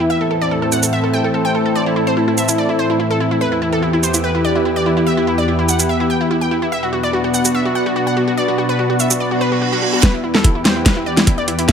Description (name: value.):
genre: heavy wobble dubstep.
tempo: 145 BPM.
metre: 4/4.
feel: half-time.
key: E minor.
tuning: A4 = 440 Hz.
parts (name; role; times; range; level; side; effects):
wide unison pluck; melody; 0.0-11.7 s; E4 to G5; -19 LUFS; equal; ping-pong delay.
lush unison pad; sustained chords; 0.0-11.7 s; E2 to A4; -19 LUFS; equal; chorus, sidechain pumping.
warbly tape-like pad; texture; 0.0-11.7 s; B3 to C6; -22 LUFS; left 2 dB; chorus, built-in reverb, sidechain pumping.
dubstep drum kit; drums; 0.7-11.7 s; hi-hat, shaker, snare drum; -16 LUFS; right 1 dB; none.
reverse cymbal; sound effects; 9.4-10.0 s; none; -21 LUFS; right 6 dB; none.
electronic kick drum; drums; 10.0-11.7 s; none; -14 LUFS; equal; none.
room: moderate digital room reverb, RT60 1.1 s, digital ambience.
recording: none.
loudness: -14 LUFS.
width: side -7 dB against mid.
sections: 0.0-10.0 A section; 10.0-11.7 B section.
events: reverse cymbal 9.4-10.0; build-up 10.0-11.7; drum fill 10.0-11.7.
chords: 0.1 Am; 3.4 Em; 6.7 Bm; 10.0 Em.